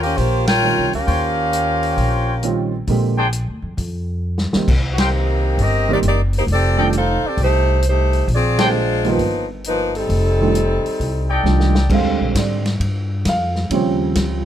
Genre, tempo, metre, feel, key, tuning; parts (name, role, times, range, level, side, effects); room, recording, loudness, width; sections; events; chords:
jazz, big band swing; 133 BPM; 4/4; swing 67% on 8ths; A4 = 442 Hz
clear saxophone section; melody; 0.0-11.4 s; Eb3 to G5; -19 LUFS; equal
dark trumpet section; stabs; 0.0-11.9 s; D4 to G5; -23 LUFS; left 2 dB
upright bass; bass; 0.0-14.4 s; F1 to Ab2; -19 LUFS; equal
vintage drum kit; drums; 0.0-14.3 s; crash cymbal, hi-hat, kick drum, ride cymbal, snare drum; -23 LUFS; left 1 dB
warm concert grand piano; accompaniment; 0.6-14.4 s; Db3 to F5; -20 LUFS; right 4 dB
little or no reverb; close, detailed microphones; -16 LUFS; side -10 dB against mid
0.0-11.9 A section; 11.9-14.4 B section
band accent 0.4, 4.9, 8.5; drum fill 4.2-4.7, 11.4-11.9; grand piano solo 11.9-14.4
0.0 Eb13; 2.9 Bb13; 4.7 Cm7; 6.5 F13; 8.3 Bb13; 9.2 G7alt; 10.1 F13; 11.9 Bb13 (rootless); 13.7 Eb13